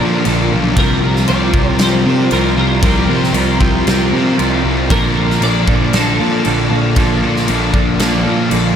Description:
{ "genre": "rock, shoegaze and dream pop", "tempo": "116 BPM", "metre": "4/4", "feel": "straight", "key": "unclear", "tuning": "A4 = 438 Hz", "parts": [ { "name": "twelve-string electric guitar", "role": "melody", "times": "0.0-8.5 s", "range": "A4 to D5", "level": "-23 LUFS", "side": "equal", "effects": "ensemble chorus, analog delay" }, { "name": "string machine, cellos", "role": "sustained chords", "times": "0.0-8.8 s", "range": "F4 to D6", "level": "-23 LUFS", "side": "equal", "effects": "ensemble chorus" }, { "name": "electric guitar through a small old amp", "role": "arpeggios", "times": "0.0-8.8 s", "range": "F3 to G4", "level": "-25 LUFS", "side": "left 2 dB", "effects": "wide subtle chorus, analog delay" }, { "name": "clean electric guitar", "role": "riff", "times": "0.0-8.8 s", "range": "Bb2 to Bb4", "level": "-20 LUFS", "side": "right 7 dB", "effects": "reverse reverb" }, { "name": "cranked stack guitar", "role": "riff", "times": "0.0-8.8 s", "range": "Bb2 to C4", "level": "-22 LUFS", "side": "equal", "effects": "overdrive, lush chorus" }, { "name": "thick fuzz guitar", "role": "riff", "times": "0.0-8.8 s", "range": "Bb2 to C4", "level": "-20 LUFS", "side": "left 6 dB", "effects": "distortion, analog chorus" }, { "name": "fuzz picked electric bass", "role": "bass", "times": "0.0-8.8 s", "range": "Bb1 to C3", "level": "-17 LUFS", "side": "equal", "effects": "overdrive" }, { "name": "huge arena drum kit", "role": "drums", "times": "0.2-8.6 s", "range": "crash cymbal, kick drum, snare drum", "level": "-18 LUFS", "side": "equal", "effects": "none" } ], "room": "moderate huge ambient reverb, RT60 5.2 s", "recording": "dreamy mix soaked in reverb", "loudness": "-11 LUFS", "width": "side -8 dB against mid", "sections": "0.0-8.8 A section", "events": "none", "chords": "0.0 Bbmaj7; 0.8 C7sus4; 4.9 Bbmaj7", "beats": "0.26 | 0.77 1.28 1.80 2.32 | 2.83 3.35 3.87 4.38 | 4.90 5.42 5.93 6.45 | 6.97 7.48 8.00 8.52" }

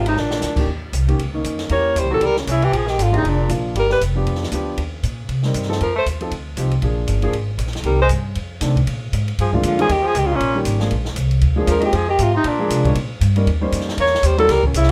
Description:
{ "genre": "jazz, small-group swing and bop", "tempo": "234 BPM", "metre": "4/4", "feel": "swing 58% on 8ths", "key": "Bb mixolydian", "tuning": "A4 = 440 Hz", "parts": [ { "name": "clear alto saxophone", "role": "melody", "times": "0.0-14.9 s", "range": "C4 to C#5", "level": "-21 LUFS", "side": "equal", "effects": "none" }, { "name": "warm tenor saxophone", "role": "second line", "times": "0.0-14.9 s", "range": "Ab2 to Bb3", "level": "-27 LUFS", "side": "equal", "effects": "none" }, { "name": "warm concert grand piano", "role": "accompaniment", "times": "0.0-14.5 s", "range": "D3 to Db5", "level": "-26 LUFS", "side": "equal", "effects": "none" }, { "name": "upright bass", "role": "bass", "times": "0.0-14.9 s", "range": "F1 to C3", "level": "-22 LUFS", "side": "equal", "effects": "none" }, { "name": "open jazz drum kit", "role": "drums", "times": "0.1-14.9 s", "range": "crash cymbal, hi-hat, kick drum, ride cymbal, snare drum", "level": "-30 LUFS", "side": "equal", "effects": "none" } ], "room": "light reverb", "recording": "none", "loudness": "-19 LUFS", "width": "mono", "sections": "0.0-8.9 A section; 8.9-14.9 A section", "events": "drum fill 0.2", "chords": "0.2 Bb; 0.7 Eb7(no3); 1.7 Edim7; 2.7 Bb7; 3.8 G7; 4.8 Cm7; 5.8 F7(no3); 6.8 Bb7; 7.8 Cm7; 8.4 F7; 8.9 Bb7; 9.9 Eb7; 10.9 Bb7; 11.9 Fm; 12.4 Bb7; 13.0 Eb7; 14.0 Edim7", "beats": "0.16 0.42 | 0.68 0.93 1.19 1.45 | 1.70 1.96 2.21 2.47 | 2.73 2.98 3.24 3.50 | 3.75 4.01 4.27 4.52 | 4.78 5.03 5.29 5.55 | 5.80 6.06 6.31 6.57 | 6.83 7.08 7.34 7.59 | 7.85 8.11 8.36 8.62 | 8.87 9.13 9.38 9.64 | 9.89 10.15 10.41 10.66 | 10.92 11.17 11.43 11.68 | 11.94 12.19 12.45 12.71 | 12.96 13.21 13.47 13.73 | 13.98 14.24 14.49 14.75" }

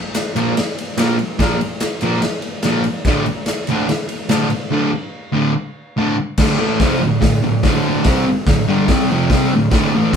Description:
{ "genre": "garage rock duo or trio", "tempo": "144 BPM", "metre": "4/4", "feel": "straight", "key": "D minor", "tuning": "A4 = 440 Hz", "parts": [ { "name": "raw garage drum kit", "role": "drums", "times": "0.1-10.2 s", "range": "crash cymbal, hi-hat, kick drum, ride cymbal, snare drum", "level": "-19 LUFS", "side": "left 1 dB", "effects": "none" }, { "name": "group handclap", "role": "percussion", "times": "0.2-4.4 s", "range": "none", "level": "-30 LUFS", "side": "left 1 dB", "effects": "none" }, { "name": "fuzz guitar", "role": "riff", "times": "0.4-10.2 s", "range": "D2 to C4", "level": "-16 LUFS", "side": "equal", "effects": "distortion" } ], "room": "moderate studio ambience, RT60 0.5 s", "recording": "band playing live in one room", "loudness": "-15 LUFS", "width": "side -7 dB against mid", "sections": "0.0-6.4 A section; 6.4-10.2 B section", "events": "none", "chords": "0.0 Bb5; 3.1 D5; 6.4 Dm", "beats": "0.15 0.57 0.98 | 1.40 1.82 2.23 2.65 | 3.07 3.48 3.90 4.32 | 4.73 5.15 5.57 5.98 | 6.40 6.82 7.23 7.65 | 8.06 8.48 8.89 9.31 | 9.73 10.14" }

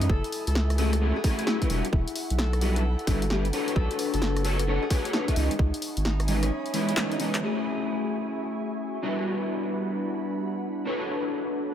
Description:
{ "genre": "UK garage, two-step garage", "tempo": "131 BPM", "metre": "4/4", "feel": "swing 65% on 16ths", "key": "F# minor", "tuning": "A4 = 437 Hz", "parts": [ { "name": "concert harp", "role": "melody", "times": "0.0-9.3 s", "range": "C#4 to A4", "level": "-34 LUFS", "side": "left 3 dB", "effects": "dub echo" }, { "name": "ethereal airy pad", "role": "sustained chords", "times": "0.0-11.7 s", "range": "B3 to D#6", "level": "-37 LUFS", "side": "right 4 dB", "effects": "ensemble chorus, built-in reverb, sidechain pumping" }, { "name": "electric guitar at the edge of break-up", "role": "stabs", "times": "0.0-11.7 s", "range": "E3 to E5", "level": "-28 LUFS", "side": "left 1 dB", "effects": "analog chorus, low-pass filter" }, { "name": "saturated sub bass", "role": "bass", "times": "0.0-6.5 s", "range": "E1 to F#2", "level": "-26 LUFS", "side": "equal", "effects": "none" }, { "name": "punchy analog drum machine", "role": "drums", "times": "0.0-7.4 s", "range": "handclaps, hi-hat, rim click, snare drum", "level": "-32 LUFS", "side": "equal", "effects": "overdrive, low-pass filter on hats, small room reverb, low-pass filter on snare" }, { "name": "electronic kick drum", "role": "drums", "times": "0.1-5.7 s", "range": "none", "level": "-25 LUFS", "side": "equal", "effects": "small room reverb" } ], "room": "digital ambience", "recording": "none", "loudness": "-24 LUFS", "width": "side -10 dB against mid", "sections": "0.0-7.4 A section; 7.4-11.7 B section", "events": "drum fill 7.0-7.4; filter sweep on ambient pad 7.4-11.7", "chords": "0.1 F#m9; 1.7 Em9; 3.5 Bm9; 5.4 C#m9; 7.4 F#m9; 9.0 Em9; 10.9 Bm9", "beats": "| 0.10 0.55 1.01 1.47 | 1.93 2.39 2.84 3.30 | 3.76 4.22 4.68 5.13 | 5.59 6.05 6.51 6.97 | 7.42 7.88 8.34 8.80 | 9.26 9.71 10.17 10.63 | 11.09 11.55" }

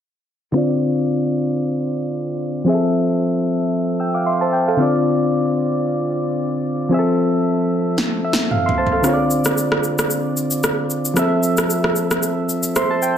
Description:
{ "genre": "afrobeats", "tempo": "113 BPM", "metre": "4/4", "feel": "swing 55% on 16ths", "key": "D minor", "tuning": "A4 = 439 Hz", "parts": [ { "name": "soft electric-piano-like synth keys", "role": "accompaniment", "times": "0.5-13.2 s", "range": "D3 to E6", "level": "-17 LUFS", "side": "equal", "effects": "chorus, low-pass filter" }, { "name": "deep house drum kit", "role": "drums", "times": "8.0-13.2 s", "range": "rim click, shaker, snare drum, toms", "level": "-20 LUFS", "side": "right 1 dB", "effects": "overdrive" } ], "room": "light reverb, digital ambience", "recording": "dense, heavily limited modern master", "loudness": "-16 LUFS", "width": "side -9 dB against mid", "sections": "0.5-13.2 A section", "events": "filter sweep on synth keys 0.5-13.2; drum fill 8.0-9.0; synth keys fill 8.0-9.0, 12.5-13.2", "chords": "0.5 Dm7; 2.7 Fmaj7; 4.8 Dm7; 6.9 Fmaj7; 9.0 Dm7; 11.2 Fmaj7", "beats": "| 0.55 1.08 1.61 2.14 | 2.67 3.20 3.73 4.26 | 4.79 5.33 5.86 6.39 | 6.92 7.45 7.98 8.51 | 9.04 9.57 10.10 10.63 | 11.17 11.70 12.23 12.76" }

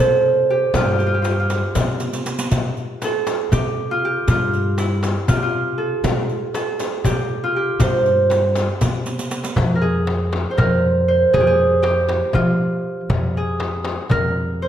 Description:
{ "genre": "Turkish makam ensemble", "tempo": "238 BPM (eighths)", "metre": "7/8", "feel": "straight", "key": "C makam hicaz, F makam nihavent from 9.6 s", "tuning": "A4 = 441 Hz", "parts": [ { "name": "Celtic harp", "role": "melody", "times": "0.0-14.7 s", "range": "E4 to C5", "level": "-19 LUFS", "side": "right 2 dB", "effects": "none" }, { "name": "upright bass", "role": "bass", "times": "0.0-14.7 s", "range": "F2 to F3", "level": "-22 LUFS", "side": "equal", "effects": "none" }, { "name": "riq", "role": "percussion", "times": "0.0-9.6 s", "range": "none", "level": "-30 LUFS", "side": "right 4 dB", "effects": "none" }, { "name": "darbuka", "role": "percussion", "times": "0.7-14.2 s", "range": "none", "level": "-23 LUFS", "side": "equal", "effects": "none" }, { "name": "frame drum", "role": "percussion", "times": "0.7-14.2 s", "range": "none", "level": "-27 LUFS", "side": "left 4 dB", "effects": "none" } ], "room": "moderate recital hall reverb, RT60 1.2 s", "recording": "none", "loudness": "-17 LUFS", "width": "side -10 dB against mid", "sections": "0.0-9.6 A section; 9.6-14.7 B section", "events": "drum fill 2.0-2.5, 9.1-9.6", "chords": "none", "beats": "0.24 0.49 | 0.74 0.99 1.25 1.50 1.75 2.00 2.25 | 2.51 2.76 3.01 3.26 3.52 3.77 4.02 | 4.27 4.53 4.78 5.03 5.28 5.54 5.79 | 6.04 6.29 6.54 6.80 7.05 7.30 7.55 | 7.81 8.06 8.31 8.56 8.82 9.07 9.32 | 9.57 9.82 10.08 10.33 10.58 10.83 11.09 | 11.34 11.59 11.84 12.10 12.35 12.60 12.85 | 13.10 13.36 13.61 13.86 14.11 14.37 14.62" }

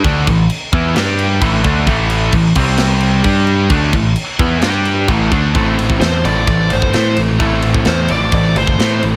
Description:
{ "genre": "heavy metal", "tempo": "130 BPM", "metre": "4/4", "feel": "straight", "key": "A minor", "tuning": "A4 = 440 Hz", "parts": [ { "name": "overdriven semi-hollow guitar", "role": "riff", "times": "0.0-9.2 s", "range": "A2 to A4", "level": "-20 LUFS", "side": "equal", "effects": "none" }, { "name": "scooped high-gain guitar", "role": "riff", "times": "0.0-9.1 s", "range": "A2 to G4", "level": "-22 LUFS", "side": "equal", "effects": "distortion" }, { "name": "growling picked electric bass", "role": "bass", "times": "0.0-9.2 s", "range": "G1 to A2", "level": "-18 LUFS", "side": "equal", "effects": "overdrive" }, { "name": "tight metal drum kit", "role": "drums", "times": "0.0-9.1 s", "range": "crash cymbal, kick drum, ride cymbal, snare drum", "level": "-20 LUFS", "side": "equal", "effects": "none" }, { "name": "high-gain lead guitar", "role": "melody", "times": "6.0-9.0 s", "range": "C5 to D5", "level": "-21 LUFS", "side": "equal", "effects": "distortion" } ], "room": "little or no reverb", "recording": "none", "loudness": "-14 LUFS", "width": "mono", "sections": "0.0-5.6 A section; 5.6-9.2 B section", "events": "half time 0.0-5.6; lead electric guitar solo 5.6-9.2", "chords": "0.0 A5; 1.0 G5; 1.4 A5; 2.6 C5; 3.3 G5; 3.7 A5; 4.6 G5; 5.1 A5; 5.6 Am", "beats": "| 0.04 0.50 0.96 1.42 | 1.88 2.34 2.79 3.25 | 3.71 4.17 4.63 5.09 | 5.56 6.02 6.48 6.94 | 7.41 7.87 8.33 8.80" }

